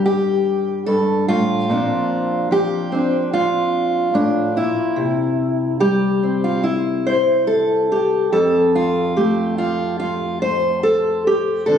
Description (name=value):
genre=folk, solo fingerstyle acoustic guitar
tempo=72 BPM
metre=4/4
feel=rubato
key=F major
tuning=A4 = 440 Hz
part: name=fingerpicked steel-string acoustic guitar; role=solo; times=0.0-11.8 s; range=F2 to C5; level=-16 LUFS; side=equal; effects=none
room=light reverb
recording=recorded on a phone in the room, studio reverb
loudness=-16 LUFS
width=side -8 dB against mid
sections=0.0-11.8 A section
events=none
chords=0.0 G5; 1.7 Bbadd9; 5.0 C; 8.3 Fadd9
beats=0.05 0.87 | 1.69 2.51 3.32 4.14 | 4.96 5.80 6.64 7.48 | 8.33 9.17 10.01 10.85 | 11.67